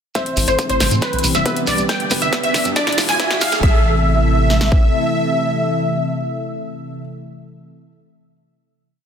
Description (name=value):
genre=uplifting trance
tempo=138 BPM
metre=4/4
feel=straight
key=A minor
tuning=A4 = 440 Hz
part: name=supersaw stab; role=melody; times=0.2-7.0 s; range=B4 to G#5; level=-21 LUFS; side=equal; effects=phaser, sidechain pumping, low-pass filter, digital delay
part: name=warm baby grand piano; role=second line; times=0.2-7.0 s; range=B3 to E5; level=-27 LUFS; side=equal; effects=ping-pong delay
part: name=wide unison pluck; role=second line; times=0.2-7.0 s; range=B4 to G#5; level=-28 LUFS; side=equal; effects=none
part: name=lush unison pad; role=sustained chords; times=0.2-7.0 s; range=B2 to A4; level=-23 LUFS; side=left 1 dB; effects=chorus, sidechain pumping
part: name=big-room dance drum kit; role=drums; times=0.2-4.8 s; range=kick drum, snare drum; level=-18 LUFS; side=equal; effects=high-pass filter on kick, studio reverb, high-pass filter on snare
part: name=big-room dance drum kit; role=drums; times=0.2-3.6 s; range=hi-hat, snare drum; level=-22 LUFS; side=left 1 dB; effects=high-pass filter on snare, studio reverb, high-pass filter on hats
part: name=shekere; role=percussion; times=0.2-3.6 s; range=none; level=-26 LUFS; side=right 5 dB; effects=none
part: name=riser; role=sound effects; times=1.6-3.6 s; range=none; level=-26 LUFS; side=right 2 dB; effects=none
part: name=tight sequencer bass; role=bass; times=0.4-4.9 s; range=D1 to A2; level=-20 LUFS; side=equal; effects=sidechain pumping
room=light reverb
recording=dense, heavily limited modern master, high-pass filter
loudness=-14 LUFS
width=side -7 dB against mid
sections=0.2-3.6 build; 3.6-7.1 final chord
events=build-up 0.2-3.6; drum fill 0.2-3.6; filter sweep on supersaw synth 0.2-3.6; filter sweep 0.2-3.6; riser 1.6-3.6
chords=0.2 Am; 1.0 Cadd9; 1.9 G; 2.8 E; 3.6 Am